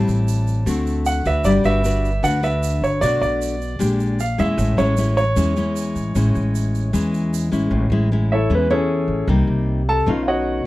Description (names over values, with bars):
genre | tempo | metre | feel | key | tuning
bossa nova | 153 BPM | 4/4 | straight | A major | A4 = 438 Hz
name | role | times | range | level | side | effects
clear concert grand piano | melody | 0.0-10.7 s | B3 to A5 | -22 LUFS | right 1 dB | none
nylon-string guitar | accompaniment | 0.0-10.7 s | A2 to B4 | -21 LUFS | left 2 dB | none
upright bass | bass | 0.0-10.6 s | G1 to E2 | -21 LUFS | equal | none
tube shaker | percussion | 0.1-7.7 s | none | -37 LUFS | right 16 dB | none
room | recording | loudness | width
little or no reverb | dry, close 1970s-style studio recording | -17 LUFS | side -17 dB against mid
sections
0.0-7.7 A section; 7.7-10.7 B section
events
grand piano solo 7.7-10.7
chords
0.0 Am7; 0.7 D7; 1.4 Gmaj7; 3.0 Bm7; 3.8 Bb6; 4.6 Amaj7; 9.3 Cm7; 10.1 B9